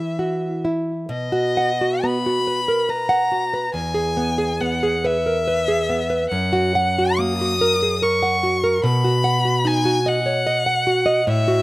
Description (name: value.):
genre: romantic duo for violin and classical guitar.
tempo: 62-74 BPM.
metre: 3/4.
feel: rubato.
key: B major.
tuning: A4 = 440 Hz.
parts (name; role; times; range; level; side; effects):
rich violin; melody; 0.0-11.6 s; D#5 to D#6; -22 LUFS; left 2 dB; slapback echo.
nylon-string guitar; accompaniment; 0.0-11.6 s; E2 to F#5; -19 LUFS; right 1 dB; none.
room: little or no reverb.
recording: recorded outdoors, with no room sound.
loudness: -17 LUFS.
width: side -19 dB against mid.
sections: 0.0-1.1 A section; 1.1-11.6 B section.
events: none.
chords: 0.0 N.C.; 1.1 B; 3.7 E; 6.3 F#; 8.9 B.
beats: 0.19 | 1.10 2.04 2.89 | 3.74 4.60 5.46 | 6.30 7.19 8.03 | 8.85 9.67 10.48 | 11.30.